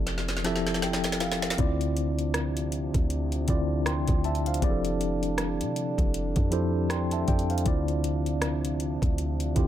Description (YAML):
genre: contemporary R&B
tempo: 79 BPM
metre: 4/4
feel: swing 58% on 16ths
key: D minor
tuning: A4 = 440 Hz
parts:
  - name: mellow tine electric piano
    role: accompaniment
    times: 0.0-9.7 s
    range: D3 to C6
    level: -29 LUFS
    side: left 1 dB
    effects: medium stereo tremolo
  - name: warm 808-style bass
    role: bass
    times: 0.0-9.7 s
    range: F1 to C3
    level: -30 LUFS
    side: equal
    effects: none
  - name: smooth R&B drum kit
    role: drums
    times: 0.1-9.7 s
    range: hi-hat, kick drum, rim click, snare drum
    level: -28 LUFS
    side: equal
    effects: none
  - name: dark brass ensemble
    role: sustained chords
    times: 1.6-9.7 s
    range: C3 to D4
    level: -34 LUFS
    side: right 2 dB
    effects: none
room: little or no reverb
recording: none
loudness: -24 LUFS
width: side -11 dB against mid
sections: 0.0-1.6 A section; 1.6-9.7 B section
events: drum fill 0.1-1.6; tine electric piano fill 0.1-1.6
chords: 0.0 Fmaj13; 1.6 Dm9; 4.6 Fmaj13; 7.7 Dm9